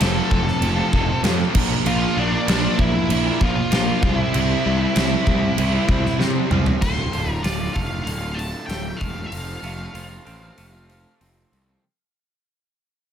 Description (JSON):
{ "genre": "quiet-loud alternative rock", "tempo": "96 BPM", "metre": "4/4", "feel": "straight", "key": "unclear", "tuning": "A4 = 442 Hz", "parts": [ { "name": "octave-fuzz lead guitar", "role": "melody", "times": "0.0-11.1 s", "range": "D4 to A5", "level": "-26 LUFS", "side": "left 1 dB", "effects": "distortion" }, { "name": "overdriven electric guitar", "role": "riff", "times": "0.0-6.8 s", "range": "F2 to C4", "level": "-25 LUFS", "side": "right 2 dB", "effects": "none" }, { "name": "raw garage guitar", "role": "riff", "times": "0.0-11.8 s", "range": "D2 to C5", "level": "-28 LUFS", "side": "right 1 dB", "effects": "overdrive" }, { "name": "fuzz picked electric bass", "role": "bass", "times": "0.0-11.8 s", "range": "D1 to C3", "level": "-24 LUFS", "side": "equal", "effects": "overdrive" }, { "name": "huge arena drum kit", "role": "drums", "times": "0.0-11.7 s", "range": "crash cymbal, hi-hat, kick drum, snare drum, toms", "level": "-22 LUFS", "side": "equal", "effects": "none" }, { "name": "twangy electric guitar", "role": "arpeggios", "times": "6.8-11.8 s", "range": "D2 to F4", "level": "-36 LUFS", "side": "right 3 dB", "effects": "tremolo" } ], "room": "light reverb", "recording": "none", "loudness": "-18 LUFS", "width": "side -9 dB against mid", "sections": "0.0-6.8 A section; 6.8-11.8 B section", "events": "drum fill 6.2-6.8; fade-out 6.8-11.8", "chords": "0.0 F; 1.5 Bb; 4.0 C; 6.8 Dm; 9.3 F", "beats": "0.00 0.61 1.23 | 1.85 2.47 3.09 3.71 | 4.33 4.95 5.57 6.20 | 6.82 7.44 8.07 8.69 | 9.32 9.95 10.58 11.21" }